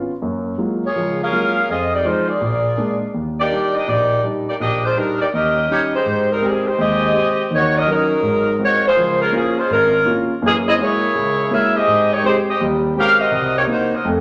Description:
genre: jazz.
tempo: 165 BPM.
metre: 4/4.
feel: swing 64% on 8ths.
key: Eb major, Ab major from 6.1 s.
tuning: A4 = 440 Hz.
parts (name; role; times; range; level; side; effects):
warm concert grand piano; accompaniment; 0.0-14.2 s; Ab1 to G4; -23 LUFS; equal; none.
mellow saxophone section; melody; 0.9-14.1 s; Eb3 to F5; -19 LUFS; equal; none.
room: wet large studio reverb, RT60 1.2 s.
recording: none.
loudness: -18 LUFS.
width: mono.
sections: 0.0-6.1 A section; 6.1-14.2 B section.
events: none.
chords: 0.2 Gbmaj9; 1.7 Fm7; 2.4 Bb7; 3.1 Ebmaj7; 5.3 Eb7; 6.1 Abmaj7; 7.5 Ebm7; 8.2 Ab7; 9.0 Db6; 10.4 Gb9; 11.9 Abmaj7; 13.3 Cm7b5.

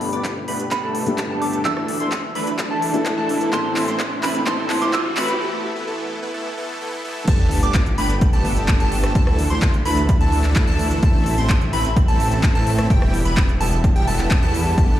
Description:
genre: EDM, festival progressive house.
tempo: 128 BPM.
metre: 4/4.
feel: straight.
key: G major.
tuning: A4 = 440 Hz.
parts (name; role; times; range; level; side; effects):
soft synth bell; melody; 0.0-5.4 s; B5 to E6; -28 LUFS; right 2 dB; chorus, phaser, dub echo.
warm baby grand piano; accompaniment; 0.0-5.4 s; G2 to A4; -27 LUFS; left 3 dB; sidechain pumping, dub echo.
lush unison pad; sustained chords; 0.4-15.0 s; B3 to G5; -30 LUFS; right 1 dB; chorus, phaser, sidechain pumping.
plucky unison lead; arpeggios; 0.0-15.0 s; G5 to D6; -26 LUFS; equal; lush chorus, sidechain pumping, dub echo.
supersaw chords; riff; 0.0-15.0 s; E3 to D5; -26 LUFS; right 1 dB; sidechain pumping, low-pass filter, dub echo.
detuned saw bass; bass; 0.0-15.0 s; E1 to A2; -24 LUFS; equal; sidechain pumping, high-pass filter.
big-room dance drum kit; drums; 0.0-14.9 s; crash cymbal, handclaps, hi-hat, rim click; -28 LUFS; equal; none.
riser and sub drop; sound effects; 2.0-9.2 s; none; -29 LUFS; equal; none.
electronic kick drum; drums; 0.2-14.9 s; none; -18 LUFS; equal; overdrive, high-pass filter on kick, high-pass filter on room.
room: light reverb, digital ambience.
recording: played on a big sound system in a bare room, large studio reverb, high-pass filter.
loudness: -17 LUFS.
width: side -13 dB against mid.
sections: 0.0-7.3 A section; 7.3-15.0 B section.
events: build-up 0.0-7.3; drum fill 0.0-5.4; filter sweep on supersaw synth 0.0-7.3; break 5.4-7.3; drop 7.3-15.0; impact 7.3-9.2.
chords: 0.0 Gadd9; 1.7 Dsus2; 3.5 Am; 5.4 E5; 7.3 Gadd9; 9.2 Dsus2; 11.0 Am; 12.9 Em.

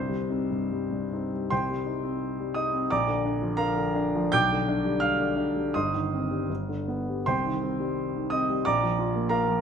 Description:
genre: classical, romantic character piece for solo piano.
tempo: 70-92 BPM.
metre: 2/4.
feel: rubato.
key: C minor.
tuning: A4 = 440 Hz.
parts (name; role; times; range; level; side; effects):
warm concert grand piano; solo; 0.0-9.6 s; G1 to G6; -24 LUFS; equal; none.
room: wet recital hall reverb, RT60 1.4 s.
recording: none.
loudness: -25 LUFS.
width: side -7 dB against mid.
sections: 0.0-1.5 A section; 1.5-9.6 A section.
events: none.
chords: 0.0 Cm; 2.9 Bb; 4.3 G/B; 5.7 Cm/G; 6.5 G; 7.3 Cm; 8.6 Bb.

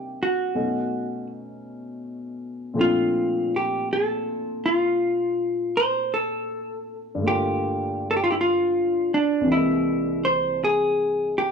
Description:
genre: jazz ballad.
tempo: 54 BPM.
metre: 4/4.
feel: swing 66% on 8ths.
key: unclear.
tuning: A4 = 440 Hz.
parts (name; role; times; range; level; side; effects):
vintage hollow-body jazz guitar; melody; 0.0-11.5 s; D4 to C5; -22 LUFS; equal; plate reverb.
warm baby grand piano; accompaniment; 0.0-11.5 s; C2 to D#5; -28 LUFS; left 2 dB; none.
room: moderate studio reverb, RT60 0.7 s.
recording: dark, warm production.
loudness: -21 LUFS.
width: side -6 dB against mid.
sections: 0.0-11.5 A section.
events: none.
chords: 0.0 Cm7; 0.5 B9; 2.8 Bbmaj9; 7.2 Gm7; 9.4 C7alt.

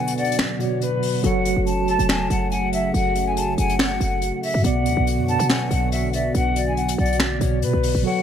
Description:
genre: hip hop, trap.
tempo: 141 BPM.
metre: 4/4.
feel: half-time.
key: unclear.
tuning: A4 = 440 Hz.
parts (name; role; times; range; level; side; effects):
breathy mellow jazz flute; melody; 0.0-8.2 s; B4 to A5; -25 LUFS; left 2 dB; low-pass filter, ping-pong delay.
hollow concert flute; second line; 0.0-7.2 s; D5 to A5; -29 LUFS; left 4 dB; ping-pong delay.
mellow tine electric piano; accompaniment; 0.0-8.2 s; B2 to D5; -25 LUFS; right 2 dB; fast stereo tremolo, low-pass filter.
dark analog pad; sustained chords; 0.0-8.2 s; C#3 to F#4; -27 LUFS; right 2 dB; chorus.
jazz brush drum kit; drums; 0.1-7.9 s; finger snaps, hi-hat, snare drum; -26 LUFS; left 1 dB; none.
short 808-style bass; bass; 1.2-8.0 s; E1 to B2; -24 LUFS; equal; none.
room: light reverb.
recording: none.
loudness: -18 LUFS.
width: side -9 dB against mid.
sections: 0.0-8.0 A section.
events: break 0.0-1.2.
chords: 0.0 Bm; 1.2 F#m; 4.6 Bm.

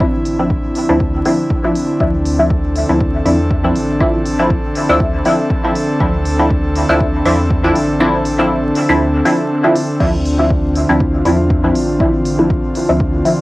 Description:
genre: dub techno.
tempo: 120 BPM.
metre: 4/4.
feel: swing 55% on 16ths.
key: D minor.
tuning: A4 = 440 Hz.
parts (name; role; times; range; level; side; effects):
airy breathy pad; sustained chords; 0.0-13.4 s; D3 to A4; -17 LUFS; equal; chorus, sidechain pumping, cassette tape.
filtered dub chord stab; stabs; 0.0-13.4 s; F3 to E4; -15 LUFS; equal; chorus, phaser, sidechain pumping, cassette tape, dub echo.
pure sine sub bass; bass; 0.0-13.2 s; A1 to E2; -21 LUFS; equal; transformer saturation, sidechain pumping.
electronic kick drum; drums; 0.0-13.1 s; none; -18 LUFS; equal; cassette tape.
deep house drum kit; drums; 0.3-13.4 s; crash cymbal, hi-hat; -31 LUFS; equal; cassette tape.
room: light reverb.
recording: home recording on cassette, vinyl crackle.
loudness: -12 LUFS.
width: side -19 dB against mid.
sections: 0.0-13.4 A section.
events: kick drops out 8.0-10.0.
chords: 0.0 Dm9.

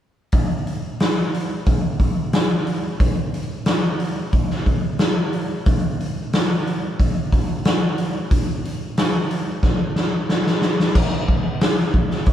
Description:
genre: rock.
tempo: 90 BPM.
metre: 4/4.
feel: straight.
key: none.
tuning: none.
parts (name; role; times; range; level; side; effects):
raw garage drum kit; drums; 0.3-12.3 s; crash cymbal, hi-hat, kick drum, snare drum; -18 LUFS; equal; none.
room: light reverb.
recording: band playing live in one room.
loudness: -18 LUFS.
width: side -11 dB against mid.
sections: 0.3-11.0 A section; 11.0-12.3 B section.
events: drum fill 9.6-11.0.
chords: none.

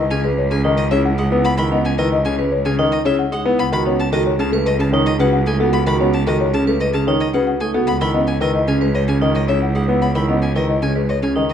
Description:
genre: classical, minimalist pattern music.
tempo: 112 BPM.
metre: 4/4.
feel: straight.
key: C# minor.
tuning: A4 = 439 Hz.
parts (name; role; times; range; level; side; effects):
buzzing marimba with soft mallets; melody; 0.0-11.5 s; A4 to F#5; -21 LUFS; left 6 dB; none.
clear cello; bass; 0.0-11.5 s; C#2; -20 LUFS; right 2 dB; none.
warm concert grand piano; accompaniment; 0.1-11.5 s; C#3 to B3; -21 LUFS; left 1 dB; none.
rich violin; arpeggios; 0.1-11.5 s; D#5 to B5; -27 LUFS; left 2 dB; none.
vibraphone with medium hard mallets; arpeggios; 0.1-11.5 s; C#4 to B4; -23 LUFS; right 6 dB; none.
room: moderate recital hall reverb, RT60 1.5 s.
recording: dark, warm production.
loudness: -15 LUFS.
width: side -8 dB against mid.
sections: 0.0-11.5 A section.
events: none.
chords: 0.0 C#m9; 3.6 B9/C#; 7.9 C#m9.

